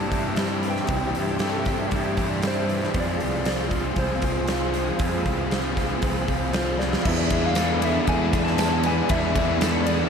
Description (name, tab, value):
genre	rock, shoegaze and dream pop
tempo	117 BPM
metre	4/4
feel	straight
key	unclear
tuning	A4 = 441 Hz
part	soft struck synth lead	melody	0.0-10.1 s	C5 to A5	-30 LUFS	left 2 dB	chorus, ping-pong delay
part	string machine, cellos	sustained chords	0.0-10.1 s	G#3 to E6	-32 LUFS	equal	phaser, ensemble chorus
part	picked twelve-string acoustic guitar	arpeggios	0.0-10.1 s	G4 to C5	-36 LUFS	left 3 dB	none
part	biting overdriven guitar	riff	0.0-10.1 s	C3 to G#4	-30 LUFS	left 8 dB	wide subtle chorus
part	electric guitar through a small old amp	riff	0.0-10.1 s	C3 to Ab4	-29 LUFS	right 7 dB	reverse reverb
part	fuzz fingered electric bass	bass	0.0-10.0 s	C2 to G2	-28 LUFS	equal	overdrive
part	huge arena drum kit	drums	0.1-10.0 s	crash cymbal, hi-hat, kick drum, ride cymbal, snare drum	-26 LUFS	equal	none
part	tambourine	percussion	7.6-9.7 s	none	-40 LUFS	right 16 dB	none
room	wet lush hall reverb, RT60 2.4 s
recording	dreamy mix soaked in reverb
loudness	-21 LUFS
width	side -6 dB against mid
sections	0.0-7.1 A section; 7.1-10.1 B section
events	drum fill 6.8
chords	0.0 Cadd9; 3.0 Fm; 7.1 E7